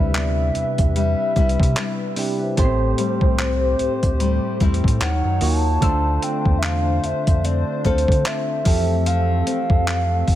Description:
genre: contemporary R&B.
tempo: 74 BPM.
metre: 4/4.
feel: swing 58% on 16ths.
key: C major.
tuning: A4 = 440 Hz.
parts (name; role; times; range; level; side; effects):
hollow clarinet-like synth lead; melody; 0.0-10.4 s; C5 to A5; -25 LUFS; equal; chorus, ping-pong delay.
soft electric-piano-like synth keys; accompaniment; 0.0-10.4 s; A2 to Db5; -25 LUFS; right 3 dB; chorus, tremolo.
hollow soft pad; sustained chords; 0.0-10.4 s; C3 to E5; -30 LUFS; left 2 dB; chorus.
nylon-string guitar; arpeggios; 0.0-10.4 s; A2 to A4; -28 LUFS; left 7 dB; none.
rubbery square bass; bass; 0.0-10.4 s; A1 to D3; -21 LUFS; equal; none.
dusty soul sampler-style drum kit; drums; 0.1-10.4 s; handclaps, hi-hat, kick drum; -21 LUFS; equal; none.
glassy wavetable pluck; texture; 0.1-9.0 s; D5 to E6; -38 LUFS; equal; chorus, ping-pong delay.
room: little or no reverb.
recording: none.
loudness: -17 LUFS.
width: side -13 dB against mid.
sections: 0.0-10.4 A section.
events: none.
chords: 0.0 Cmaj7; 2.6 Am7; 5.0 Ebm7; 5.8 Dm7; 8.7 Fmaj7.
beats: 0.14 0.96 1.77 | 2.58 3.39 4.20 5.01 | 5.82 6.63 7.44 8.25 | 9.06 9.88.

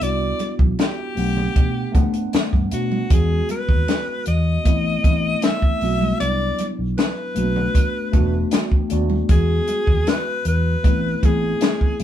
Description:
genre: lush 1970s-style soul.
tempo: 78 BPM.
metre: 4/4.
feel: straight.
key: E major.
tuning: A4 = 440 Hz.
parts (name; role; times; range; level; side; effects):
edgy alto saxophone; melody; 0.0-12.0 s; F#4 to E5; -25 LUFS; left 1 dB; none.
tine electric piano; accompaniment; 0.0-12.0 s; F#3 to A5; -26 LUFS; left 1 dB; overdrive, slow stereo tremolo.
vintage muted fingered electric bass; bass; 0.0-12.0 s; E1 to B2; -22 LUFS; equal; none.
compact cocktail drum kit; drums; 0.0-12.0 s; hi-hat, kick drum, snare drum; -18 LUFS; equal; none.
congas; percussion; 0.4-11.8 s; none; -29 LUFS; right 3 dB; none.
room: moderate studio reverb, RT60 0.6 s.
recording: band playing live in one room.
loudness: -17 LUFS.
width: side -10 dB against mid.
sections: 0.0-12.0 A section.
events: tine electric piano fill 7.7-9.3.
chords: 0.0 Cmaj9#11; 1.2 Gmaj9/B; 3.1 E69; 4.7 Amadd9; 6.2 Cmaj9#11; 7.4 Em11; 9.3 E69; 10.8 Amadd9.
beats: | 0.01 0.79 1.56 2.33 | 3.11 3.88 4.66 5.43 | 6.20 6.97 7.75 8.52 | 9.29 10.07 10.84 11.61.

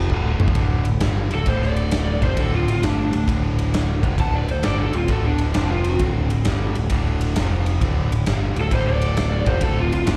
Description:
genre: blues rock power trio and southern rock.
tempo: 132 BPM.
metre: 4/4.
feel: swing 67% on 8ths.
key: D mixolydian.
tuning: A4 = 440 Hz.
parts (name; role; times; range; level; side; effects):
percussive tonewheel organ; sustained chords; 0.0-10.2 s; F3 to C5; -40 LUFS; equal; none.
raw garage guitar; riff; 0.0-10.2 s; D2 to G3; -30 LUFS; equal; overdrive, slapback echo.
growling picked electric bass; bass; 0.0-10.2 s; D1 to G1; -24 LUFS; equal; overdrive.
big rock drum kit; drums; 0.1-10.2 s; kick drum, ride cymbal, snare drum, toms; -26 LUFS; equal; none.
lead guitar through a small cranked amp; melody; 1.3-10.2 s; D4 to A5; -27 LUFS; equal; overdrive, slapback echo.
dark smooth lead guitar; second line; 1.3-10.2 s; F3 to F#5; -34 LUFS; equal; overdrive, slapback echo.
room: small room reverb.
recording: live gig heard through the venue's PA, recital hall reverb.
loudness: -20 LUFS.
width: mono.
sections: 0.6-10.2 A section.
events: drum fill 0.1-0.6.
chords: 0.1 D; 5.5 F5; 6.0 D; 7.4 F5; 7.8 D.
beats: 0.11 | 0.56 1.01 1.47 1.92 | 2.37 2.83 3.28 3.73 | 4.19 4.64 5.10 5.55 | 6.00 6.46 6.91 7.36 | 7.82 8.27 8.72 9.18 | 9.63 10.08.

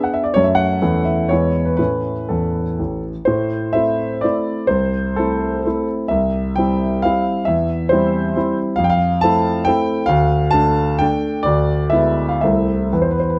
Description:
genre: classical, romantic triple-time dance for piano with dotted rhythms.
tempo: 108-146 BPM.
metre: 3/4.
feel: rubato.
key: A major, A minor from 3.3 s.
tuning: A4 = 442 Hz.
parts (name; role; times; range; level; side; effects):
warm grand piano; solo; 0.0-13.4 s; A1 to A5; -18 LUFS; equal; none.
room: light reverb.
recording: close, detailed microphones.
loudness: -18 LUFS.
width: mono.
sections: 0.0-3.3 A section; 3.3-13.4 B section.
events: none.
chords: 0.4 F#m; 0.8 A/E; 1.3 E; 1.8 A; 3.3 Am; 4.7 Am/C; 6.1 C; 7.5 C/E; 8.8 Fmaj7; 10.1 Dm; 11.5 E7/D; 12.4 Am/C.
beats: | 0.37 0.82 1.31 | 1.79 2.30 2.79 | 3.26 3.74 4.23 | 4.70 5.17 5.65 | 6.10 6.56 7.03 | 7.46 7.91 8.36 | 8.79 9.22 9.67 | 10.10 10.54 11.02 | 11.46 11.93 12.43 | 12.92.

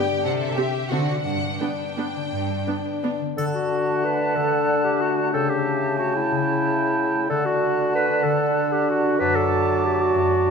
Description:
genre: classical, orchestral ballroom waltz.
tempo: 159-205 BPM.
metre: 3/4.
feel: rubato.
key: G major, D major from 3.4 s.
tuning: A4 = 440 Hz.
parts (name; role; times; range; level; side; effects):
rich studio violin section; melody; 0.0-3.2 s; E5 to G5; -32 LUFS; left 2 dB; none.
rich studio violin section; second line; 0.0-3.2 s; D4 to A4; -31 LUFS; equal; none.
rich studio viola section; accompaniment; 0.0-3.1 s; B3 to G4; -28 LUFS; right 3 dB; none.
concert harp; arpeggios; 0.0-10.5 s; F#2 to D5; -27 LUFS; left 8 dB; none.
bright studio cello section; bass; 0.2-2.6 s; G2 to D3; -29 LUFS; right 6 dB; none.
clear clarinet; second line; 3.4-10.5 s; E4 to B4; -24 LUFS; equal; none.
silver concert flute; second line; 3.4-10.5 s; A5; -28 LUFS; right 2 dB; none.
warm oboe; second line; 3.4-10.5 s; D5 to G5; -28 LUFS; right 1 dB; none.
warm bassoon; accompaniment; 3.4-10.5 s; C#3 to F#3; -24 LUFS; right 3 dB; none.
triangle; percussion; 3.4-4.0 s; none; -45 LUFS; left 1 dB; none.
room: wet scoring stage reverb, RT60 1.6 s.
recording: none.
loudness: -20 LUFS.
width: side -6 dB against mid.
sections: 0.0-3.4 A section; 3.4-10.5 B section.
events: none.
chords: 0.3 C; 0.9 D7; 1.3 G; 3.4 D; 5.3 A7/C#; 7.3 D; 9.2 D/F#.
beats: | 0.25 0.57 0.91 | 1.25 1.61 1.98 | 2.32 2.67 3.03 | 3.38 3.71 4.04 | 4.36 4.68 5.01 | 5.34 5.66 5.99 | 6.31 6.63 6.98 | 7.29 7.61 7.93 | 8.24 8.55 8.89 | 9.20 9.52 9.84 | 10.15 10.46.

